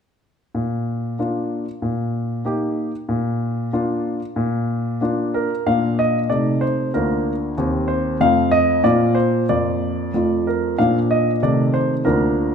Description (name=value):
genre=classical-period piano sonatina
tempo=94 BPM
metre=2/4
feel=straight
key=Bb major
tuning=A4 = 440 Hz
part: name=clear grand piano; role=solo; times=0.5-12.5 s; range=D2 to F5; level=-18 LUFS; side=equal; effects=none
room=wet recital hall reverb, RT60 1.6 s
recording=minimal, uncompressed stereo recording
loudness=-18 LUFS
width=side -7 dB against mid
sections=0.6-5.7 A section; 5.7-12.5 B section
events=none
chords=0.6 Bb; 1.8 Eb/Bb; 3.1 Bb; 6.3 Adim/C; 6.9 Bb/D; 7.6 Cm7/Eb; 8.2 F; 8.8 Bb; 9.5 Bb/F; 10.1 F; 10.8 Bb; 11.4 Adim/C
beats=| 0.55 1.19 | 1.82 2.45 | 3.08 3.71 | 4.36 5.01 | 5.67 6.31 | 6.94 7.57 | 8.20 8.84 | 9.48 10.13 | 10.79 11.43 | 12.07